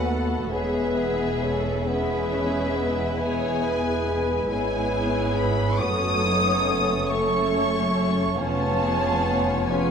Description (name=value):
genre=classical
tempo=46 BPM (dotted quarters)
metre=12/8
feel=rubato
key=E major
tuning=A4 = 439 Hz
part: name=warm symphonic violin section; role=melody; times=0.0-9.9 s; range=E5 to D#6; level=-30 LUFS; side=left 4 dB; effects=none
part: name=mellow clarinet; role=second line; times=0.0-9.9 s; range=G#4 to B4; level=-32 LUFS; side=left 1 dB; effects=none
part: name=mellow cor anglais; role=second line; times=0.0-9.9 s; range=B4 to C#5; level=-31 LUFS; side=right 2 dB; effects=none
part: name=mellow small flute group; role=second line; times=0.0-9.9 s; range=E5 to D#6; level=-31 LUFS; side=right 3 dB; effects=none
part: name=warm studio violin section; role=second line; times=0.0-9.9 s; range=E4 to C#5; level=-33 LUFS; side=left 4 dB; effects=none
part: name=dark symphonic viola section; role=accompaniment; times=0.0-9.9 s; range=A3 to A4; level=-30 LUFS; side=left 1 dB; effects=none
part: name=warm bassoon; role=accompaniment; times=0.0-9.9 s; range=A3 to E#4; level=-31 LUFS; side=right 2 dB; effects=none
part: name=mellow French horn section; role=sustained chords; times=0.0-9.9 s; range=G#3 to C#4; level=-31 LUFS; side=left 3 dB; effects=none
part: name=dark symphonic cello section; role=bass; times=0.0-9.9 s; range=D#2 to G#2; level=-30 LUFS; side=right 1 dB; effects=none
part: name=dark symphonic double bass section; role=bass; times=0.0-9.9 s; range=E1 to D#2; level=-30 LUFS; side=right 2 dB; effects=none
room=wet scoring stage reverb, RT60 1.6 s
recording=none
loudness=-21 LUFS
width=side -6 dB against mid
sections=0.0-9.9 A section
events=none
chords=0.0 B7/D#; 0.5 E; 5.8 F#m; 8.4 C#7/E#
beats=| 0.53 1.88 3.20 4.51 | 5.80 7.10 8.40 9.71